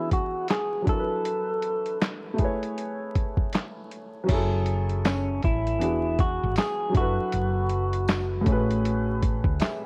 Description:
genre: lo-fi hip hop.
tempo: 79 BPM.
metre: 4/4.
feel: swing 62% on 16ths.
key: F# minor.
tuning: A4 = 441 Hz.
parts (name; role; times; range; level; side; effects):
clean electric guitar; melody; 0.0-9.2 s; C#4 to A4; -31 LUFS; equal; low-pass filter.
warm upright piano; accompaniment; 0.0-9.9 s; A2 to E5; -32 LUFS; equal; cassette tape, low-pass filter.
lo-fi sampler-style drum kit; drums; 0.1-9.8 s; crash cymbal, handclaps, hi-hat, kick drum, snare drum; -28 LUFS; equal; none.
woody fretless electric bass; bass; 4.3-9.6 s; E1 to D2; -30 LUFS; equal; none.
tambourine; percussion; 5.0-9.8 s; none; -52 LUFS; equal; none.
room: light reverb.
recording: worn, warbling old tape, cassette tape, vinyl crackle, warbly pitch drift.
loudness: -26 LUFS.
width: mono.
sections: 0.0-4.3 A section; 4.3-9.9 B section.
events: filter sweep 0.0-4.3.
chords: 0.0 E9; 0.9 D69/F#; 2.4 Amaj9; 4.3 F#m7; 5.8 E9; 6.9 D69/F#; 8.5 Amaj9.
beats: 0.49 | 1.25 2.01 2.77 3.53 | 4.29 5.05 5.81 6.57 | 7.33 8.09 8.85 9.61.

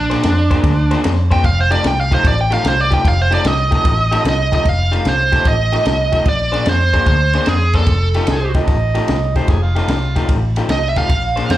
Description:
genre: electric blues shuffle.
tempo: 149 BPM.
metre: 4/4.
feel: swing 68% on 8ths.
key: F mixolydian.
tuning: A4 = 443 Hz.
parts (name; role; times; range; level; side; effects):
biting lead guitar; melody; 0.0-11.6 s; D4 to G5; -17 LUFS; right 2 dB; overdrive.
vintage muted fingered electric bass; bass; 0.0-11.6 s; F1 to F2; -17 LUFS; equal; none.
electric guitar through a small old amp; riff; 0.1-11.6 s; F3 to C5; -22 LUFS; left 4 dB; slapback echo.
compact cocktail drum kit; drums; 0.1-11.6 s; kick drum, ride cymbal, snare drum; -19 LUFS; equal; none.
overdriven harmonica; second line; 8.3-10.4 s; F4 to Eb5; -24 LUFS; right 6 dB; slapback echo.
room: little or no reverb.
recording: live gig heard through the venue's PA, club reverb.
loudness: -13 LUFS.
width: side -14 dB against mid.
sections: 0.0-4.7 A section; 4.7-11.6 B section.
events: lead electric guitar solo 0.0-4.7.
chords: 0.0 Bb9; 1.4 F9; 6.3 Bb9; 7.9 F9.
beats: 0.24 0.64 1.04 | 1.45 1.85 2.25 2.65 | 3.05 3.45 3.85 4.25 | 4.66 5.06 5.46 5.86 | 6.26 6.67 7.07 7.47 | 7.88 8.28 8.68 9.08 | 9.49 9.89 10.29 10.70 | 11.10 11.50.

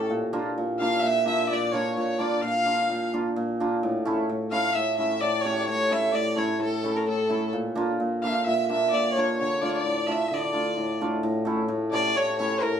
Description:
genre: klezmer.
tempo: 130 BPM.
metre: 4/4.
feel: straight.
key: unclear.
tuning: A4 = 440 Hz.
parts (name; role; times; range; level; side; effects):
warm violin; melody; 0.0-12.8 s; A4 to F5; -27 LUFS; right 1 dB; none.
dark violin; second line; 0.0-12.8 s; A4 to F5; -30 LUFS; left 3 dB; none.
hammered dulcimer; accompaniment; 0.0-12.8 s; A2 to G4; -26 LUFS; equal; none.
room: wet studio reverb, RT60 0.5 s.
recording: heard from further back in the room.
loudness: -23 LUFS.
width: side -8 dB against mid.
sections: 0.0-11.2 A section; 11.2-12.8 A section.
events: none.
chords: 0.1 Bb; 3.8 A; 7.5 Bb; 9.4 Dm; 11.2 A.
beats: | 0.09 0.55 1.02 1.49 | 1.96 2.42 2.89 3.35 | 3.82 4.28 4.75 5.21 | 5.68 6.14 6.61 7.07 | 7.53 7.99 8.46 8.92 | 9.38 9.84 10.30 10.77 | 11.23 11.69 12.15 12.61.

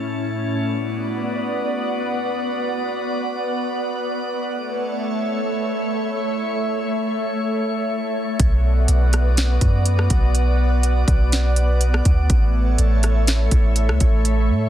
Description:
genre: hip hop, atmospheric cloud-rap.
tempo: 123 BPM.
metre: 4/4.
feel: half-time.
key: B minor.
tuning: A4 = 440 Hz.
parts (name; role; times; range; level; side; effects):
glassy FM pad; sustained chords; 0.0-14.7 s; A2 to F#5; -23 LUFS; equal; ensemble chorus, built-in reverb, sidechain pumping.
drifting glass-harmonics texture; texture; 0.0-14.7 s; A3 to A5; -31 LUFS; equal; chorus, built-in reverb.
soft 808-style bass; bass; 8.4-14.7 s; A1 to A2; -17 LUFS; equal; none.
trap drum kit; drums; 8.4-14.4 s; hi-hat, kick drum, rim click, snare drum; -19 LUFS; equal; none.
room: light reverb.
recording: dense, heavily limited modern master.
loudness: -18 LUFS.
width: side -12 dB against mid.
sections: 0.6-14.7 A section.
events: none.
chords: 0.0 A; 0.6 Bm; 4.5 A; 8.4 Bm; 12.3 A.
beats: 0.10 | 0.59 1.08 1.57 2.05 | 2.54 3.03 3.52 4.00 | 4.49 4.98 5.47 5.96 | 6.44 6.93 7.42 7.91 | 8.39 8.88 9.37 9.86 | 10.35 10.83 11.32 11.81 | 12.30 12.79 13.27 13.76 | 14.25.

